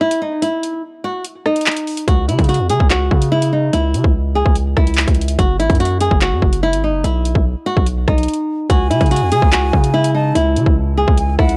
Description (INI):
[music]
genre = hip hop, drill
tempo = 145 BPM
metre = 4/4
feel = half-time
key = C# minor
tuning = A4 = 435 Hz
[part]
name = flamenco guitar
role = melody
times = 0.0-11.6 s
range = D#4 to G#4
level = -21 LUFS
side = equal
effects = none
[part]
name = drill drum kit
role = drums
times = 0.1-11.6 s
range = handclaps, hi-hat, kick drum, rim click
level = -18 LUFS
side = equal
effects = vintage 12-bit sampler grit
[part]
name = distorted 808-style bass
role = bass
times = 2.1-11.6 s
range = F#1 to C#3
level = -20 LUFS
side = equal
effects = distortion
[part]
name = breathy concert flute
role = second line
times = 8.7-11.6 s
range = F#5 to A5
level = -25 LUFS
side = equal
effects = analog delay
[part]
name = glassy FM pad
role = sustained chords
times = 9.7-11.6 s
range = C#3 to E4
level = -32 LUFS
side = equal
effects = none
[sound]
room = little or no reverb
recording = dry, gritty hardware recording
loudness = -16 LUFS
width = mono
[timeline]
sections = 0.0-8.7 A section; 8.7-11.6 B section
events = break 0.0-2.1, 8.3-8.7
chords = 0.0 N.C.; 2.1 C#m; 5.4 N.C.; 7.0 B; 8.7 C#m